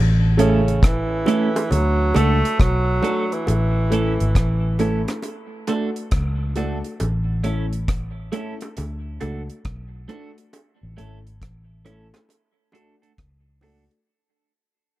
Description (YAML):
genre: roots reggae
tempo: 68 BPM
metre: 4/4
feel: swing 65% on 16ths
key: unclear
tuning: A4 = 440 Hz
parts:
  - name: vintage muted fingered electric bass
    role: bass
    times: 0.0-13.9 s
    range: G#1 to D2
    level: -21 LUFS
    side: equal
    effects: tube saturation
  - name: warm tenor saxophone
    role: melody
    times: 0.4-5.1 s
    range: C#3 to A3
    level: -24 LUFS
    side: right 2 dB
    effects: dub echo
  - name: clean electric guitar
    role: accompaniment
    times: 0.4-13.8 s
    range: A3 to A4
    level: -26 LUFS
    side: right 5 dB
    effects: phaser, dub echo
  - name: warm concert grand piano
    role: stabs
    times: 0.4-14.0 s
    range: A3 to A4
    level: -28 LUFS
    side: left 4 dB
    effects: none
  - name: deep reggae drum kit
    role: drums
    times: 0.4-14.1 s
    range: hi-hat, kick drum, rim click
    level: -22 LUFS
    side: equal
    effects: none
  - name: bongos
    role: percussion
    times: 1.3-13.9 s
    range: none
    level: -31 LUFS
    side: right 1 dB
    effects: none
room: light reverb, small room ambience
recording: dark, warm production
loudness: -18 LUFS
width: side -16 dB against mid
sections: 0.0-14.1 A section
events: fade-out 0.0-14.1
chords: 0.0 A; 1.7 D; 3.5 A; 5.2 D; 7.0 A; 8.8 D; 10.5 A; 12.3 D